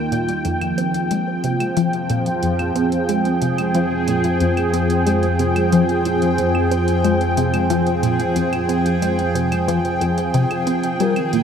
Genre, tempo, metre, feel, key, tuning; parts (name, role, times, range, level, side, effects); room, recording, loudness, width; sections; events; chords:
ambient, sequencer-driven space music; 91 BPM; 4/4; straight; F minor; A4 = 440 Hz
sweeping resonant pad; sustained chords; 0.0-11.4 s; Eb3 to G5; -19 LUFS; equal; chorus
analog drone; bass; 0.0-11.4 s; Eb2 to F2; -25 LUFS; equal; chorus
tight sequenced synth; riff; 0.1-11.4 s; F2 to C4; -22 LUFS; left 1 dB; chorus, phaser, analog delay
electronic hi-hat and claves; percussion; 0.1-11.4 s; -32 LUFS; right 3 dB; analog delay
bubbling stepped-filter texture; texture; 0.4-11.4 s; Ab4 to G5; -28 LUFS; equal; chorus, built-in reverb
expressive synth lead; melody; 11.0-11.4 s; Bb4; -23 LUFS; left 2 dB; analog chorus
wet cathedral reverb, RT60 6.3 s; in a vast, echoing space; -16 LUFS; side -7 dB against mid
0.5-11.4 A section
0.5 Fm